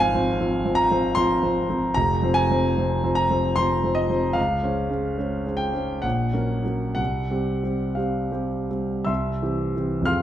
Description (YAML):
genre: classical, romantic nocturne for solo piano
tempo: 52-80 BPM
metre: 3/4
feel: rubato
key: F minor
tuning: A4 = 441 Hz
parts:
  - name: warm concert grand piano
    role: solo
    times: 0.0-10.2 s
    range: F1 to F6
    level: -21 LUFS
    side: equal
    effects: none
room: wet recital hall reverb, RT60 1.4 s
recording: dark, warm production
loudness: -21 LUFS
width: side -11 dB against mid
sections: 0.0-10.1 A section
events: none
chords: 0.0 Fm/Ab; 1.9 Fm; 4.4 Dbmaj7; 6.0 Gb/Bb; 7.0 Csus4; 9.1 C